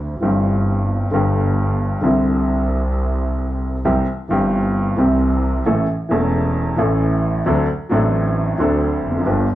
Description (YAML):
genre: tango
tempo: 133 BPM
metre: 4/4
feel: rubato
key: C major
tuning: A4 = 440 Hz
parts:
  - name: warm upright piano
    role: accompaniment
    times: 0.0-9.5 s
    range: E1 to A4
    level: -17 LUFS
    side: equal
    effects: none
  - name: clear double bass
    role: bass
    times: 0.0-9.5 s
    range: E1 to D2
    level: -21 LUFS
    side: right 1 dB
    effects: none
room: moderate large studio reverb, RT60 0.8 s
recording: dark, warm production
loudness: -16 LUFS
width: side -14 dB against mid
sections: 0.0-3.9 A section; 3.9-9.6 A section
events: none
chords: 0.2 C/G; 1.1 G; 2.0 Cadd9; 3.9 C; 5.7 A; 7.5 D7